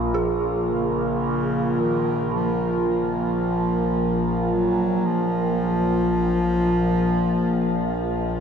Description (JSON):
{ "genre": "dark ambient drone", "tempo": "55 BPM", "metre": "4/4", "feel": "straight", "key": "Bb minor", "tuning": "A4 = 440 Hz", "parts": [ { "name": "sweeping resonant pad", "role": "sustained chords", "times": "0.0-8.4 s", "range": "Bb3 to Bb4", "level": "-24 LUFS", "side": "equal", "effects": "chorus, phaser, shimmer reverb" }, { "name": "dark detuned synth bell", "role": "arpeggios", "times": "0.0-8.4 s", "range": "Eb4 to Bb4", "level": "-32 LUFS", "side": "right 4 dB", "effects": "chorus, shimmer reverb, ping-pong delay" }, { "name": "overtone-sweeping drone", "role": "drone", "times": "0.0-8.4 s", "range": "Bb1", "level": "-26 LUFS", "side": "right 2 dB", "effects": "chorus, built-in reverb, phaser" }, { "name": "breathy bass clarinet", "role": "melody", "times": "0.7-8.4 s", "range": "Db3 to Gb3", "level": "-24 LUFS", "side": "left 2 dB", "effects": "shimmer reverb, ping-pong delay" } ], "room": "wet huge ambient reverb, RT60 7.3 s", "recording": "none", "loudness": "-20 LUFS", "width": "side -7 dB against mid", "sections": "0.0-8.4 A section", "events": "none", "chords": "0.0 Bb5" }